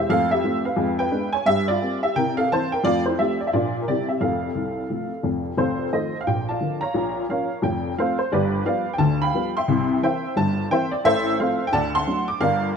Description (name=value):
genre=jazz, stride piano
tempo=175 BPM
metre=4/4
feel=swing 62% on 8ths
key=F major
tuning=A4 = 440 Hz
part: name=honky-tonk upright piano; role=solo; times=0.0-12.7 s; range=F1 to D6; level=-20 LUFS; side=equal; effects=none
room=moderate huge ambient reverb, RT60 4.7 s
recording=none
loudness=-20 LUFS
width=side -6 dB against mid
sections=0.0-5.6 A section; 5.6-12.8 B section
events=none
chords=0.1 F; 0.8 Fdim7; 1.5 C5/G; 2.2 C7; 2.8 F; 3.5 Bb; 3.9 C7; 4.2 F; 5.6 F7; 6.3 Bbmaj7; 6.9 Bbm; 7.6 F; 8.3 G7; 9.7 C7; 10.4 C7/G; 11.0 F/A; 11.7 D7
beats=| 0.10 0.44 0.78 1.12 | 1.47 1.81 2.15 2.50 | 2.84 3.18 3.52 3.87 | 4.21 4.55 4.89 5.23 | 5.58 5.92 6.26 6.60 | 6.94 7.29 7.63 7.97 | 8.31 8.65 9.00 9.34 | 9.68 10.02 10.36 10.71 | 11.05 11.39 11.73 12.07 | 12.41